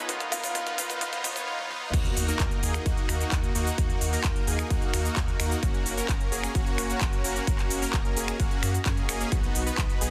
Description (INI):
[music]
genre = EDM, festival progressive house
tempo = 130 BPM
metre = 4/4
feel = straight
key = unclear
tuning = A4 = 439 Hz
[part]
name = buzzing kalimba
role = melody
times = 0.0-0.9 s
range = C#5 to E#5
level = -40 LUFS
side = equal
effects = tape echo
[part]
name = clear baby grand piano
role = accompaniment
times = 0.0-2.0 s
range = D#3 to E#4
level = -44 LUFS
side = equal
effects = sidechain pumping, tape echo
[part]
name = lush unison pad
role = sustained chords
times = 0.0-10.1 s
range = E#4 to B5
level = -41 LUFS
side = equal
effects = chorus, sidechain pumping
[part]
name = supersaw chords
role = riff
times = 0.0-10.1 s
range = A#3 to B4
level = -34 LUFS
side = equal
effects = sidechain pumping, tape echo
[part]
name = riser and impact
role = sound effects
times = 0.0-3.8 s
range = none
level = -43 LUFS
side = equal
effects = none
[part]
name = saturated sub bass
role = bass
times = 0.1-10.1 s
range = F#1 to F#2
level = -34 LUFS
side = equal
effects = sidechain pumping
[part]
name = big-room dance drum kit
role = drums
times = 0.1-10.1 s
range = crash cymbal, finger snaps, handclaps, hi-hat, shaker, toms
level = -35 LUFS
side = equal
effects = soft clipping on snare
[part]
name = electronic kick drum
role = drums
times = 0.1-9.9 s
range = none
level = -30 LUFS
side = equal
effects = high-pass filter on kick
[sound]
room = light reverb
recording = dense, heavily limited modern master, high-pass filter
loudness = -27 LUFS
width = mono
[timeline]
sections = 0.0-1.9 A section; 1.9-10.1 B section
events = build-up 0.0-1.9; drum fill 0.0-1.5, 1.6-1.9; riser 0.0-1.5; drop 1.9-10.1; impact 1.9-3.8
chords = 0.0 C#add9; 1.9 D#m; 5.6 F#; 9.3 B